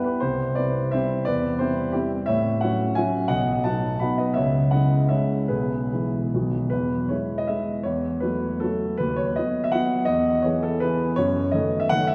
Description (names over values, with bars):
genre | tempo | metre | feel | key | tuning
classical, romantic triple-time dance for piano with dotted rhythms | 139-184 BPM | 3/4 | rubato | E major | A4 = 441 Hz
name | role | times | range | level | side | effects
warm concert grand piano | solo | 0.0-12.1 s | B1 to B5 | -23 LUFS | equal | none
room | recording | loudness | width
wet church reverb, RT60 3.6 s | recorded in a church or concert hall | -24 LUFS | mono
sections
0.0-6.7 A section; 6.7-12.1 B section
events
none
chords
0.2 C; 1.3 C/E; 2.3 F#m7/A; 3.3 B; 4.4 C#m; 5.5 E/B; 6.3 B; 6.7 E; 7.9 F#m7/E; 9.0 B/D#; 10.1 E; 11.2 D#dim/F#